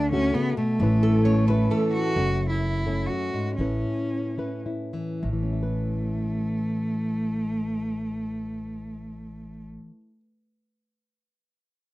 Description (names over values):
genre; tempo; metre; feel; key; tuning
acoustic folk duo or small band; 98-132 BPM; 3/4; straight; A major; A4 = 440 Hz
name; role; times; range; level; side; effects
warm cello; melody; 0.0-9.6 s; A3 to F#4; -27 LUFS; equal; none
nylon-string guitar; accompaniment; 0.0-10.2 s; F#2 to B4; -29 LUFS; left 2 dB; none
upright bass; bass; 0.0-9.8 s; F#1 to D2; -28 LUFS; equal; none
metal-body resonator slide guitar; second line; 1.0-2.1 s; A4 to C#5; -29 LUFS; right 3 dB; none
room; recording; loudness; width
moderate small room reverb, RT60 0.5 s; dry, close 1970s-style studio recording; -23 LUFS; side -18 dB against mid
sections
0.0-2.2 A section; 2.2-5.2 B section; 5.2-8.9 C section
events
slowing down 2.2-5.2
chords
0.0 D; 0.8 Aadd9; 2.2 F#m; 3.6 Aadd9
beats
0.34 | 0.80 1.25 1.71 | 2.16 2.62 3.09 | 3.58 4.09 4.64 | 5.22 5.83 6.45 | 7.05 7.67 8.28